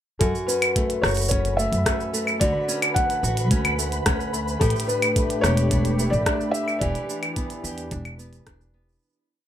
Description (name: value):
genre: folktronica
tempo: 109 BPM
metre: 4/4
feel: straight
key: unclear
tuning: A4 = 441 Hz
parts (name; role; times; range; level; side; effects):
- felt-muted upright piano; melody; 0.2-8.4 s; A4 to F#5; -26 LUFS; left 1 dB; tape echo
- nylon-string guitar; arpeggios; 0.2-9.5 s; F#2 to G4; -29 LUFS; equal; tape echo
- upright bass; bass; 0.2-9.0 s; E1 to F#2; -25 LUFS; equal; none
- electronic kick drum; drums; 0.2-8.6 s; none; -26 LUFS; equal; none
- minimal click drum kit; drums; 0.2-9.2 s; cabasa, claves, hi-hat, rim click; -26 LUFS; equal; none
- flickering grainy texture; texture; 0.6-9.0 s; B4 to B5; -34 LUFS; right 1 dB; built-in reverb
- warm analog pad; sustained chords; 4.8-9.0 s; E3 to G4; -30 LUFS; equal; chorus
room: light reverb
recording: none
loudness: -20 LUFS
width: side -10 dB against mid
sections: 0.2-9.0 chorus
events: fade-out 6.1-9.0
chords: 0.2 F#m7; 2.4 Dmaj7; 4.6 A7sus4; 6.8 Em7